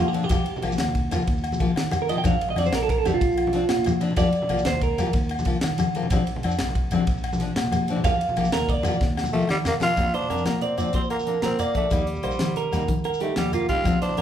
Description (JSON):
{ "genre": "highlife guitar band", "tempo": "124 BPM (dotted quarters)", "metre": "12/8", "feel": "straight", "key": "unclear", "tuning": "A4 = 440 Hz", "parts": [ { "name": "clean electric guitar", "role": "arpeggios", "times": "0.0-5.1, 8.0-14.2 s", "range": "F4 to G5", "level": "-25 LUFS", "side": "right 4 dB", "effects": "none" }, { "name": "fingered electric bass", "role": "bass", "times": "0.0-14.2 s", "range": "Bb1 to Eb3", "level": "-30 LUFS", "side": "right 1 dB", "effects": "none" }, { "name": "picked steel-string acoustic guitar", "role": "accompaniment", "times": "0.1-14.2 s", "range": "F3 to G4", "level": "-29 LUFS", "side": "left 3 dB", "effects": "none" }, { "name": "tight funk drum kit", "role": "drums", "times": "0.1-14.2 s", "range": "hi-hat, kick drum, ride cymbal, snare drum", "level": "-28 LUFS", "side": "equal", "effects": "none" }, { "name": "congas", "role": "percussion", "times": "0.1-14.2 s", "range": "none", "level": "-30 LUFS", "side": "left 3 dB", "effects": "none" }, { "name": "agogo bells", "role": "percussion", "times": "0.3-14.2 s", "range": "none", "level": "-32 LUFS", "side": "left 3 dB", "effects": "none" }, { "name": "shekere", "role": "percussion", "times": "0.3-14.1 s", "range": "none", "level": "-33 LUFS", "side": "right 1 dB", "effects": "none" }, { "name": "growling tenor saxophone", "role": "melody", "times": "9.3-14.2 s", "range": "G3 to F4", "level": "-27 LUFS", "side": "equal", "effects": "none" } ], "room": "moderate large studio reverb, RT60 1.3 s", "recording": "band playing live in one room", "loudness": "-21 LUFS", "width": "side -10 dB against mid", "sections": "0.0-10.0 A section; 10.0-14.2 B section", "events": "clean electric guitar solo 0.0-10.0; drum fill 9.0-10.0", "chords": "0.3 Ebadd9; 2.2 Bbadd9; 4.2 Ebadd9; 6.1 Bbadd9; 8.0 Ebadd9; 10.0 Bbadd9; 11.9 Eb", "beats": "| 0.31 0.79 1.27 1.76 | 2.24 2.73 3.21 3.69 | 4.18 4.66 5.14 5.63 | 6.11 6.59 7.08 7.56 | 8.04 8.53 9.01 9.49 | 9.98 10.46 10.94 11.43 | 11.91 12.40 12.88 13.37 | 13.85" }